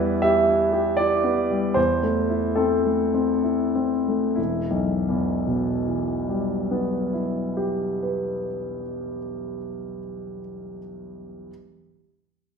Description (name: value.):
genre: classical, romantic character piece for solo piano.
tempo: 60-82 BPM.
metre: 3/4.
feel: rubato.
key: E minor.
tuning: A4 = 441 Hz.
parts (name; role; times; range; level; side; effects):
warm concert grand piano; solo; 0.0-11.5 s; E1 to E5; -22 LUFS; equal; none.
room: wet large studio reverb, RT60 1.2 s.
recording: heard from further back in the room.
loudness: -21 LUFS.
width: side -6 dB against mid.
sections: 0.0-4.4 A section; 4.4-9.3 B section.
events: slowing down 0.0-4.4.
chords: 0.0 Em; 1.8 Am/E; 4.4 Em.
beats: 0.24 0.99 | 1.76 2.58 3.45 | 4.38 5.19 6.03 | 6.85 7.67 8.49.